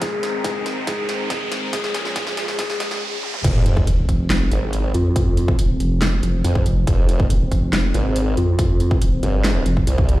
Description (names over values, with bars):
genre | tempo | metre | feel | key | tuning
heavy wobble dubstep | 140 BPM | 4/4 | half-time | F minor | A4 = 440 Hz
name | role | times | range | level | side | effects
felt-muted upright piano | melody | 0.0-3.0 s | Ab3 to Ab4 | -27 LUFS | left 2 dB | digital delay
lush unison pad | sustained chords | 0.0-10.2 s | Ab2 to Bb4 | -30 LUFS | equal | chorus, sidechain pumping
dubstep drum kit | drums | 0.0-10.2 s | crash cymbal, handclaps, hi-hat, snare drum, toms | -26 LUFS | equal | high-pass filter on hats, high-pass filter on snare, high-pass filter on toms, high-pass filter on cymbals
electronic kick drum | drums | 0.0-10.1 s | none | -20 LUFS | equal | none
riser and sub drop | sound effects | 0.0-5.2 s | none | -25 LUFS | equal | none
formant-sweep wobble bass | bass | 3.4-10.2 s | F1 to F2 | -19 LUFS | equal | chorus, overdrive
vowel-sweep wobble bass | bass | 3.9-9.9 s | Eb1 to F2 | -19 LUFS | equal | chorus, overdrive
room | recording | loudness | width
digital ambience | played on a big sound system in a bare room, large studio reverb, high-pass filter | -17 LUFS | side -16 dB against mid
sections
0.0-3.4 A section; 3.4-10.2 B section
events
build-up 0.0-3.4; drum fill 0.0-3.0, 3.2; riser 0.0-3.4; filter sweep 0.0-3.4; stop 3.0-3.4; drop 3.4-10.2; impact 3.4-5.2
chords
0.0 Abadd9; 1.7 Bbm; 3.4 F5